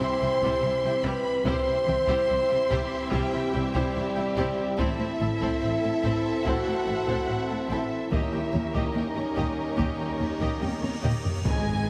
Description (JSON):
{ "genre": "cinematic, epic orchestral film score", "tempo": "72 BPM", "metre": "4/4", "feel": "straight", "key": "unclear", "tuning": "A4 = 440 Hz", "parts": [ { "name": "dark symphonic violin section", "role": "melody", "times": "0.0-11.9 s", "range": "G4 to C6", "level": "-40 LUFS", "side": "equal", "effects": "none" }, { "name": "warm symphonic violin section", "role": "second line", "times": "0.0-11.9 s", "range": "G4 to A#5", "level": "-39 LUFS", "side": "equal", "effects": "none" }, { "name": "warm studio viola section", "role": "accompaniment", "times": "0.0-11.9 s", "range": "G3 to G4", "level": "-39 LUFS", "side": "equal", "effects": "none" }, { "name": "mellow French horn section", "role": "sustained chords", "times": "0.0-11.9 s", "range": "G3 to C5", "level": "-30 LUFS", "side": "equal", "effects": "none" }, { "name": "warm symphonic string section", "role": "sustained chords", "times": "0.0-11.9 s", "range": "G#3 to E5", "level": "-37 LUFS", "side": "equal", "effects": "none" }, { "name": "warm trombone section", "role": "sustained chords", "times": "0.0-11.9 s", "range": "D#3 to D#4", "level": "-40 LUFS", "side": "equal", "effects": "none" }, { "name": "rich symphonic cello section", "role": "bass", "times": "0.0-11.9 s", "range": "D#2 to C3", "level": "-36 LUFS", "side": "equal", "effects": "none" }, { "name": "dark chamber double bass section", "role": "bass", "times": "0.2-11.9 s", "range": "G#1 to D#2", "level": "-38 LUFS", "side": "equal", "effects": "none" }, { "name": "taiko ensemble", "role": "drums", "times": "0.4-11.9 s", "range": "none", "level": "-34 LUFS", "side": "equal", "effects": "none" }, { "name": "cymbal swell and impact", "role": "sound effects", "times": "10.2-11.9 s", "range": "none", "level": "-43 LUFS", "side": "equal", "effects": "none" }, { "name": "timpani", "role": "percussion", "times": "11.5-11.9 s", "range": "G#2", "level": "-33 LUFS", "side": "equal", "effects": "none" } ], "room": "wet scoring stage reverb, RT60 2.0 s", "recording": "heavily compressed radio sound", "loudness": "-27 LUFS", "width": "mono", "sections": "0.0-11.5 A section", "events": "cymbal swell 10.2-11.5; drum fill 10.6-11.5; impact 11.5-11.9", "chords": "0.0 C; 4.8 Am; 8.1 D#7" }